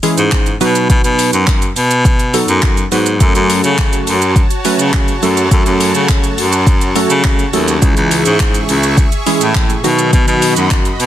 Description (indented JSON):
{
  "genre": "dance-pop",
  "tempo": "104 BPM",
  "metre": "4/4",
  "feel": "straight",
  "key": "F# dorian",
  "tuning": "A4 = 442 Hz",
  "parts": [
    { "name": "warm analog keys", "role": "accompaniment", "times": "0.0-10.8 s", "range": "D#3 to B4", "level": "-16 LUFS", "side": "right 1 dB", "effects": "chorus, sidechain pumping" },
    { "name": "deep house drum kit", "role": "drums", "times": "0.0-11.1 s", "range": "handclaps, hi-hat, kick drum, shaker", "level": "-14 LUFS", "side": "equal", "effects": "overdrive" },
    { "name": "breathy baritone saxophone", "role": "bass", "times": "0.2-11.1 s", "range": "C#2 to C#3", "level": "-14 LUFS", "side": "equal", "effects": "sidechain pumping" },
    { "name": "supersaw pad", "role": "sustained chords", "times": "3.2-11.1 s", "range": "F#4 to C#6", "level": "-20 LUFS", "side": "right 1 dB", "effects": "sidechain pumping" }
  ],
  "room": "little or no reverb",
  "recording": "dense, heavily limited modern master",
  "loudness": "-10 LUFS",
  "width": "side -12 dB against mid",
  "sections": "0.0-11.1 A section",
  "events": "none",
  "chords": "0.0 C#m; 0.6 B; 3.2 F#m; 7.8 C#m; 9.8 B"
}